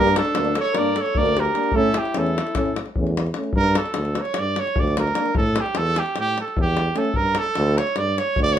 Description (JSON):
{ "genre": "balkan folk, Balkan brass band", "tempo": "299 BPM (eighths)", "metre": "9/8", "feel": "straight", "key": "unclear", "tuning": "A4 = 440 Hz", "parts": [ { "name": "clear trumpet", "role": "melody", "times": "0.0-8.6 s", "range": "G4 to D5", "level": "-22 LUFS", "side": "right 4 dB", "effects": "none" }, { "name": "warm alto saxophone", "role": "second line", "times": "0.0-2.8 s", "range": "D4 to Bb4", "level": "-26 LUFS", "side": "left 6 dB", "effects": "none" }, { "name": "dark trombone", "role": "accompaniment", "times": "0.0-7.1 s", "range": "A3 to Bb3", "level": "-27 LUFS", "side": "right 6 dB", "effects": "none" }, { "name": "warm euphonium", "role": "accompaniment", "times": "0.0-7.1 s", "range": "C#4 to D4", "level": "-28 LUFS", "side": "left 5 dB", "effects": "none" }, { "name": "mellow tuba", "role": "bass", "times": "0.0-8.6 s", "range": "D2 to A2", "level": "-24 LUFS", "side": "equal", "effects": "none" }, { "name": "davul", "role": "percussion", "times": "0.2-8.5 s", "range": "none", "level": "-26 LUFS", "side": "left 2 dB", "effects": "none" } ], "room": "moderate studio reverb, RT60 0.6 s", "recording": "minimal, uncompressed stereo recording", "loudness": "-19 LUFS", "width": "side -10 dB against mid", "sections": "0.0-3.6 A section; 3.6-8.6 A section", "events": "none", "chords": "0.0 Gm; 1.7 A; 3.6 Gm; 5.4 A5; 7.2 G5" }